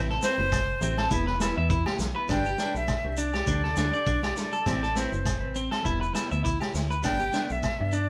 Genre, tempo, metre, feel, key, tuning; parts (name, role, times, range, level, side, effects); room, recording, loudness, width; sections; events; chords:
highlife guitar band; 101 BPM; 4/4; swing 54% on 16ths; G major; A4 = 440 Hz
clean electric guitar; accompaniment; 0.0-8.0 s; G3 to B4; -38 LUFS; equal
electric guitar at the edge of break-up; arpeggios; 0.0-8.1 s; C4 to E5; -33 LUFS; equal
metallic FM bass; bass; 0.0-8.1 s; E1 to G2; -33 LUFS; equal
vintage drum kit; drums; 0.1-7.8 s; kick drum, snare drum; -35 LUFS; equal
breathy bright jazz flute; melody; 0.2-8.1 s; C5 to G5; -32 LUFS; equal
shekere; percussion; 0.2-8.1 s; -39 LUFS; equal
congas; percussion; 0.4-2.2 s; -42 LUFS; equal
agogo bells; percussion; 0.5-7.8 s; -42 LUFS; equal
moderate studio reverb, RT60 0.8 s; band playing live in one room; -27 LUFS; mono
0.0-2.3 A section; 2.3-8.1 B section
0.0 Amadd9; 1.1 Em; 2.3 G; 3.5 Dsus4; 4.7 Amadd9; 5.9 Em; 7.0 G